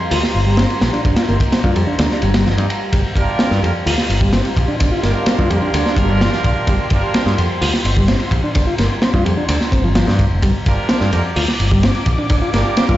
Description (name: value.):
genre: breakbeat, breaks.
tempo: 128 BPM.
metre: 4/4.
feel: straight.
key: G minor pentatonic.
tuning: A4 = 440 Hz.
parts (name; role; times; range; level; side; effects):
dark analog pad; sustained chords; 0.0-13.0 s; G4 to D6; -25 LUFS; right 1 dB; chorus, sidechain pumping.
combo organ; riff; 0.1-13.0 s; F3 to F4; -22 LUFS; equal; overdrive, low-pass filter, ping-pong delay.
modern bright picked electric bass; bass; 0.1-13.0 s; F1 to G2; -18 LUFS; equal; none.
crunchy breakbeat drum kit; drums; 0.1-13.0 s; hi-hat, kick drum, ride cymbal, snare drum; -17 LUFS; equal; none.
clear brass ensemble; stabs; 3.2-7.4, 10.7-13.0 s; D4 to Bb4; -23 LUFS; right 4 dB; ping-pong delay.
room: light reverb, small room ambience.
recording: played on a big sound system in a bare room, large studio reverb, nothing above 7.8 kHz.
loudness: -14 LUFS.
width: side -14 dB against mid.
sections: 0.0-13.0 A section.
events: kick drops out 2.0-2.9.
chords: 0.0 Gm7.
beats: 0.11 0.58 | 1.05 1.52 1.99 2.46 | 2.93 3.40 3.86 4.33 | 4.80 5.27 5.74 6.21 | 6.68 7.14 7.61 8.08 | 8.55 9.02 9.49 9.96 | 10.43 10.89 11.36 11.83 | 12.30 12.77.